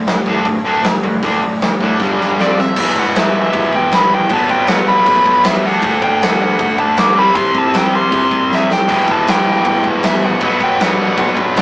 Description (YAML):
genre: punk rock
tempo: 157 BPM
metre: 4/4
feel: straight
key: E minor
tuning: A4 = 440 Hz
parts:
  - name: distorted electric guitar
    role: riff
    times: 0.0-11.6 s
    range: E2 to D4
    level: -16 LUFS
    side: equal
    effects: distortion
  - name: raw garage guitar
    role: riff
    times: 0.0-11.6 s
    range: B2 to D5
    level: -25 LUFS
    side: equal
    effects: none
  - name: sludgy distorted guitar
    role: riff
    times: 0.0-2.8, 8.9-11.6 s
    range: B2 to G4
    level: -23 LUFS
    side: right 1 dB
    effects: overdrive
  - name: fuzz picked electric bass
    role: bass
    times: 0.1-11.6 s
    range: E1 to A2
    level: -23 LUFS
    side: equal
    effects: overdrive
  - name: big rock drum kit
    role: drums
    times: 0.1-11.6 s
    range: crash cymbal, hi-hat, kick drum, snare drum, splash cymbal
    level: -17 LUFS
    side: equal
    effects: none
  - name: nasal lead guitar with a parked wah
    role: melody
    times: 2.4-11.6 s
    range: D5 to D6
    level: -15 LUFS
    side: equal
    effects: overdrive
room: light reverb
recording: rough rehearsal-room recording, small speaker sound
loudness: -11 LUFS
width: side -24 dB against mid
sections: 0.0-2.8 A section; 2.8-11.6 B section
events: drum fill 2.0-2.8, 8.5-8.9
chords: 0.0 D; 2.0 G5; 2.4 F5; 2.8 Em; 4.3 Bm; 5.6 D; 7.2 C; 8.9 Em; 10.4 Bm